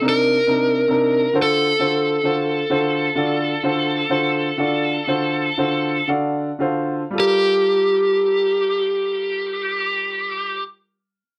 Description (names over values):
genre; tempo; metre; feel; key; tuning
blues; 37-46 BPM (dotted quarters); 12/8; straight; G minor; A4 = 440 Hz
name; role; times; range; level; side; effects
overdriven slide guitar; melody; 0.0-10.6 s; G4 to Bb4; -21 LUFS; equal; none
bright upright piano; accompaniment; 0.0-10.6 s; C3 to F#5; -24 LUFS; equal; none
room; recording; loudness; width
moderate studio ambience, RT60 0.5 s; none; -20 LUFS; mono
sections
0.0-7.2 A section; 7.2-11.4 B section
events
slowing down 0.0-7.2; upright piano fill 5.6-7.2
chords
0.0 Cm7; 1.4 D7#9; 7.2 Gm7